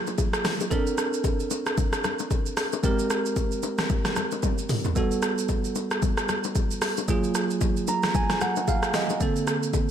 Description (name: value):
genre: amapiano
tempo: 113 BPM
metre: 4/4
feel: swing 58% on 16ths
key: unclear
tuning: A4 = 438 Hz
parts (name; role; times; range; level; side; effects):
- bell-like tine electric piano; accompaniment; 0.0-9.9 s; D3 to A#5; -27 LUFS; right 3 dB; none
- deep house drum kit; drums; 0.1-9.9 s; hi-hat, kick drum, rim click, shaker, snare drum, toms; -26 LUFS; equal; none
- bongos and congas; percussion; 0.1-9.9 s; none; -34 LUFS; left 12 dB; none
room: light reverb, digital ambience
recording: none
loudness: -23 LUFS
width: side -9 dB against mid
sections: 0.0-9.9 A section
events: drum fill 4.4-5.0; tine electric piano fill 7.6-9.2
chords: 0.0 F#maj9; 0.7 Bbmaj9; 2.8 Abmaj9; 5.0 Gmaj9; 7.1 F#maj9; 9.2 Bbmaj9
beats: 0.18 | 0.71 1.24 1.77 2.31 | 2.84 3.37 3.90 4.43 | 4.96 5.49 6.02 6.55 | 7.08 7.62 8.15 8.68 | 9.21 9.74